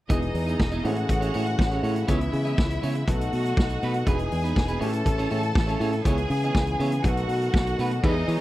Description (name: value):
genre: disco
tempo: 121 BPM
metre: 4/4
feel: straight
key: E major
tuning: A4 = 439 Hz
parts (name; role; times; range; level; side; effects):
- bright studio violin section; second line; 0.1-8.4 s; D#4 to A5; -31 LUFS; left 1 dB; none
- clean electric guitar; accompaniment; 0.1-8.4 s; A3 to D#5; -32 LUFS; right 5 dB; none
- clear concert grand piano; accompaniment; 0.1-8.4 s; E3 to A4; -32 LUFS; left 3 dB; none
- warm French horn section; sustained chords; 0.1-8.4 s; C#3 to G#4; -34 LUFS; right 1 dB; none
- fingered electric bass; bass; 0.1-8.4 s; E1 to E3; -27 LUFS; equal; none
- vintage drum kit; drums; 0.1-8.4 s; crash cymbal, hi-hat, kick drum, snare drum; -25 LUFS; equal; none
room: little or no reverb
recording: dry, close 1970s-style studio recording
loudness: -22 LUFS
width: side -16 dB against mid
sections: 0.1-8.0 A section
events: none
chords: 0.1 Emaj7; 0.8 Amaj7; 2.1 C#m7; 3.1 B7; 4.1 Emaj7; 4.8 Amaj7; 6.1 C#m7; 7.0 B7